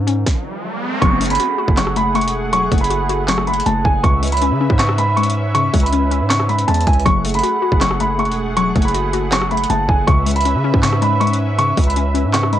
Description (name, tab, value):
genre	hip hop, trap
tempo	159 BPM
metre	4/4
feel	half-time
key	F# minor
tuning	A4 = 440 Hz
part	hollow square pluck	accompaniment	0.0-12.6 s	C#3 to F#4	-22 LUFS	left 9 dB	chorus, low-pass filter, cassette tape, plate reverb
part	distorted 808-style bass	bass	0.0-12.6 s	E1 to C#3	-19 LUFS	right 1 dB	distortion
part	riser	sound effects	0.2-1.0 s	none	-24 LUFS	right 1 dB	none
part	trap drum kit	drums	0.1-12.6 s	handclaps, hi-hat, kick drum, rim click, snare drum	-19 LUFS	right 1 dB	none
part	dark concert grand piano	melody	1.0-12.6 s	G#5 to C#6	-19 LUFS	right 2 dB	low-pass filter, cassette tape, plate reverb
part	warm analog pad	sustained chords	1.0-12.6 s	A3 to F#5	-24 LUFS	right 2 dB	chorus, cassette tape, plate reverb
room	light reverb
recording	home recording on cassette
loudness	-14 LUFS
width	side -11 dB against mid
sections	0.0-1.0 A section; 1.0-12.6 B section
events	riser 0.2-1.0; stop 0.3-1.0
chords	0.0 C#5; 1.0 F#madd9; 4.0 C#m7; 7.1 F#madd9; 10.1 C#m7